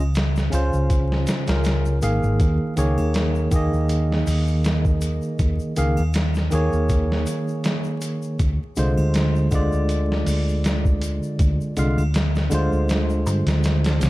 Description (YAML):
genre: trip hop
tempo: 80 BPM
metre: 4/4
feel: swing 55% on 16ths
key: F minor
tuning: A4 = 440 Hz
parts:
  - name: barky tine electric piano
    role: accompaniment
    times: 0.0-14.1 s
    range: Db3 to F5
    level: -23 LUFS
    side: equal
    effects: harmonic tremolo, tape echo
  - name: hollow-body short-scale fingered electric bass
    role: bass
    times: 0.0-14.1 s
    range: Ab1 to G2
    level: -21 LUFS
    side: equal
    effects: none
  - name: tube shaker and triangle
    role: percussion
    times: 0.1-14.1 s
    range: none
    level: -43 LUFS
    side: left 4 dB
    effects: none
  - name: boom bap sampler-style drum kit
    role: drums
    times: 0.2-14.1 s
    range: hi-hat, kick drum, snare drum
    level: -24 LUFS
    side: equal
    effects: none
room: light reverb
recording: dark, warm production, vinyl crackle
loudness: -19 LUFS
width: side -18 dB against mid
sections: 0.0-14.1 A section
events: kick drops out 12.9-14.1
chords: 0.0 Dbmaj7; 2.4 Eb7sus4; 8.4 Fm6/C